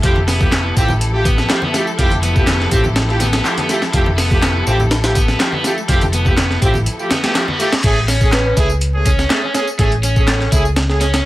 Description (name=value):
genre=breakbeat, breaks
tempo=123 BPM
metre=4/4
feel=straight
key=unclear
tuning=A4 = 440 Hz
part: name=rich studio string section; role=sustained chords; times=0.0-7.8 s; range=F3 to A4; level=-25 LUFS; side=left 2 dB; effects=sidechain pumping
part: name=overdriven semi-hollow guitar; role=riff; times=0.0-11.2 s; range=F3 to E4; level=-22 LUFS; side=equal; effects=dub echo
part: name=warm brass ensemble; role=stabs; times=0.0-11.0 s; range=A3 to G#4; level=-21 LUFS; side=right 1 dB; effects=dub echo
part: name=hollow-body short-scale picked electric bass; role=bass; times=0.0-11.2 s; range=F1 to C#2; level=-18 LUFS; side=equal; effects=none
part: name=breakbeat sampler-style drum kit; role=drums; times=0.0-11.2 s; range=crash cymbal, hi-hat, kick drum, snare drum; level=-17 LUFS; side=equal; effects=none
part: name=electronic tambourine and handclaps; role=drums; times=0.0-11.2 s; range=none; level=-25 LUFS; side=equal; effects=overdrive
part: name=congas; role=percussion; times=0.2-7.6 s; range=none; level=-26 LUFS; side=right 1 dB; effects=none
part: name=reverse cymbal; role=sound effects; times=7.2-7.8 s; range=none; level=-25 LUFS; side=left 1 dB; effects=none
part: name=buzzing marimba with hard mallets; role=melody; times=8.3-10.7 s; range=A4 to B4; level=-25 LUFS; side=equal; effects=telephone sound, vintage 12-bit sampler grit, dub echo
room=light reverb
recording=vinyl crackle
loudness=-13 LUFS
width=side -16 dB against mid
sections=0.0-7.8 A section; 7.8-11.3 B section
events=reverse cymbal 7.2-7.8; drop 7.8-11.3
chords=0.0 Fmaj9; 7.8 Amaj9